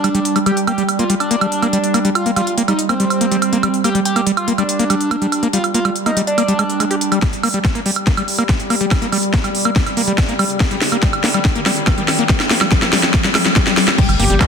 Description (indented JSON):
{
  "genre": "psychedelic trance",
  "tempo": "142 BPM",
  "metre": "4/4",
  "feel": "straight",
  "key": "G minor",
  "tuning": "A4 = 440 Hz",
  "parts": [
    { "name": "overdriven synth lead", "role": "melody", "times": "0.0-7.1, 14.0-14.3 s", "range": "C4 to G4", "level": "-21 LUFS", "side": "equal", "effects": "distortion, phaser, sidechain pumping, dub echo" },
    { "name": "evolving wavetable pad", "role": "sustained chords", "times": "0.0-14.5 s", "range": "G3", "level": "-22 LUFS", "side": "right 3 dB", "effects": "chorus, built-in reverb, sidechain pumping" },
    { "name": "overdriven acid bass", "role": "riff", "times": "0.0-14.3 s", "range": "G3 to G4", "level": "-20 LUFS", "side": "moving between left 5 dB and right 2 dB", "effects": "distortion, auto-pan, sidechain pumping, dub echo" },
    { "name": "techno drum kit", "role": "drums", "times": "0.0-14.5 s", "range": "crash cymbal, handclaps, hi-hat, snare drum, woodblock", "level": "-18 LUFS", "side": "right 2 dB", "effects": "none" },
    { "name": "electronic kick drum", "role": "drums", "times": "7.2-14.5 s", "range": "none", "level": "-16 LUFS", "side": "left 1 dB", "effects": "none" },
    { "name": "riser and impact", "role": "sound effects", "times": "9.3-14.5 s", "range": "none", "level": "-24 LUFS", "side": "left 2 dB", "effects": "none" },
    { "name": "plucky analog bass", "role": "bass", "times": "14.1-14.4 s", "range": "G1", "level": "-16 LUFS", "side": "left 1 dB", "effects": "none" }
  ],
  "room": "moderate lush hall reverb, RT60 1.8 s",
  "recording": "dense, heavily limited modern master",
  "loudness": "-14 LUFS",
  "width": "side -6 dB against mid",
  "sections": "0.0-7.2 A section; 7.2-14.0 B section",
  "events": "build-up 7.2-14.0; drum fill 7.2-14.0; filter sweep on acid bass 7.2-14.0; riser 9.3-14.0; impact 14.0-14.5",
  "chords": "0.0 Gm",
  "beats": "0.04 | 0.46 0.89 1.31 1.73 | 2.15 2.58 3.00 3.42 | 3.84 4.27 4.69 5.11 | 5.53 5.96 6.38 6.80 | 7.22 7.65 8.07 8.49 | 8.91 9.34 9.76 10.18 | 10.60 11.03 11.45 11.87 | 12.29 12.72 13.14 13.56 | 13.98 14.41"
}